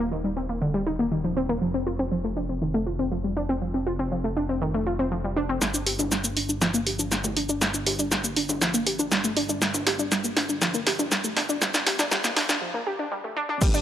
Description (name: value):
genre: melodic techno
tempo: 120 BPM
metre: 4/4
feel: straight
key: G minor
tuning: A4 = 440 Hz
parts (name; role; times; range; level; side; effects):
- warbly dusty pluck; arpeggios; 0.0-13.8 s; D3 to D5; -26 LUFS; equal; chorus, sidechain pumping, tape echo
- dark detuned saw bass; bass; 0.0-13.8 s; Eb1 to G1; -33 LUFS; equal; sidechain pumping
- punchy analog drum machine; drums; 5.6-13.8 s; crash cymbal, hi-hat, shaker, snare drum, toms; -24 LUFS; equal; high-pass filter on snare, high-pass filter on perc, high-pass filter on hats, high-pass filter on toms, high-pass filter on cymbals, high-pass filter on room
- electronic kick drum; drums; 13.6-13.7 s; none; -20 LUFS; equal; none
room: moderate concert hall reverb, RT60 2.3 s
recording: dry, gritty hardware recording, transformer saturation, high-pass filter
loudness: -23 LUFS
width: side -10 dB against mid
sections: 0.0-5.6 A section; 5.6-13.6 B section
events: build-up 5.6-13.6; drum fill 5.6-12.6; filter sweep on synth arpeggio sound 5.6-13.6; break 12.6-13.6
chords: 0.0 N.C.; 1.6 F5; 5.6 G5